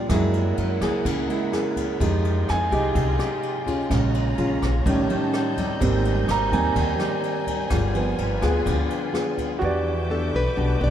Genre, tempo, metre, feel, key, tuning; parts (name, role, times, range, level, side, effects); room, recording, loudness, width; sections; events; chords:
bossa nova; 126 BPM; 4/4; straight; A4 = 440 Hz
nylon-string guitar; accompaniment; 0.0-10.9 s; Ab2 to G#4; -26 LUFS; left 2 dB
warm concert grand piano; accompaniment; 0.0-10.9 s; Db3 to Bb5; -26 LUFS; right 4 dB
warm studio violin section; sustained chords; 0.0-10.9 s; D#4 to G6; -33 LUFS; equal
upright bass; bass; 0.1-10.9 s; G1 to F#2; -24 LUFS; equal
jazz brush drum kit; drums; 0.1-9.5 s; kick drum, ride cymbal, rim click; -30 LUFS; left 1 dB
nylon-string guitar; melody; 10.1-10.9 s; A4 to D5; -27 LUFS; left 1 dB
moderate cathedral reverb, RT60 6.4 s; in a vast, echoing space; -20 LUFS; side -10 dB against mid
0.0-9.6 A section; 9.6-10.9 B section
grand piano solo 0.0-9.6
0.1 F#9; 2.0 Fm9; 3.9 Bbm7; 4.9 A7#11; 5.8 Abmaj7; 7.7 G7b9; 9.6 Em7